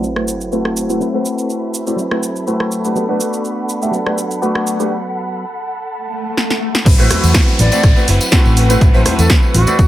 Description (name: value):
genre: filtered disco house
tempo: 123 BPM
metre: 4/4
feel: swing 53% on 16ths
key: A dorian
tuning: A4 = 444 Hz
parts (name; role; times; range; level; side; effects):
- bright baby grand piano; accompaniment; 0.0-9.8 s; A3 to E5; -19 LUFS; left 1 dB; phaser, sidechain pumping, low-pass filter
- dark symphonic violin section; sustained chords; 0.0-9.9 s; C4 to B5; -26 LUFS; equal; sidechain pumping, low-pass filter
- direct-recorded clean electric guitar; riff; 0.0-9.9 s; F#3 to B4; -23 LUFS; right 1 dB; sidechain pumping, low-pass filter
- punchy analog drum machine; drums; 0.0-9.9 s; crash cymbal, hi-hat, rim click, shaker, snare drum; -19 LUFS; equal; sidechain pumping on hats, sidechain pumping on perc, sidechain pumping on cymbals
- sub drop, swell and downlifter; sound effects; 0.0-1.0, 6.0-9.9 s; none; -24 LUFS; left 1 dB; none
- hollow-body short-scale fingered electric bass; bass; 6.9-9.9 s; F#1 to E2; -14 LUFS; equal; sidechain pumping, low-pass filter
- electronic kick drum; drums; 6.9-9.9 s; none; -11 LUFS; equal; none
- tambourine and congas; percussion; 6.9-9.9 s; none; -22 LUFS; left 1 dB; sidechain pumping on perc, low-pass filter on perc
- breathy jazz flute; melody; 7.6-9.9 s; F#4 to D5; -20 LUFS; left 1 dB; sidechain pumping, low-pass filter
room: light reverb, small room ambience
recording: none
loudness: -12 LUFS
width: side -14 dB against mid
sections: 0.0-6.9 A section; 6.9-9.9 B section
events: impact 0.0-1.0; filter sweep 0.0-6.9; break 4.9-6.9; swell 6.0-6.9; drum fill 6.4-6.9; drop 6.9-9.9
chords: 0.0 Am69; 3.0 Gmaj9 (rootless); 6.9 Am69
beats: 0.03 0.52 | 1.01 1.50 1.98 2.47 | 2.96 3.45 3.93 4.42 | 4.91 5.40 5.88 6.37 | 6.86 7.35 7.84 8.32 | 8.81 9.30 9.79